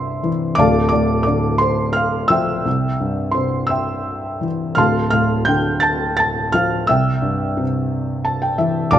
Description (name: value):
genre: classical, lyrical solo piano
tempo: 58 BPM (dotted quarters)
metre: 6/8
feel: rubato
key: unclear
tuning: A4 = 440 Hz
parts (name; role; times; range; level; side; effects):
- felt-muted upright piano; solo; 0.0-9.0 s; D1 to A6; -16 LUFS; equal; none
room: light reverb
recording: close, detailed microphones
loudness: -16 LUFS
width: side -10 dB against mid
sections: 0.0-9.0 A section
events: felt piano fill 7.9-8.9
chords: 0.0 Cadd9; 0.6 Dm7; 2.7 C; 4.8 Dm7; 6.9 C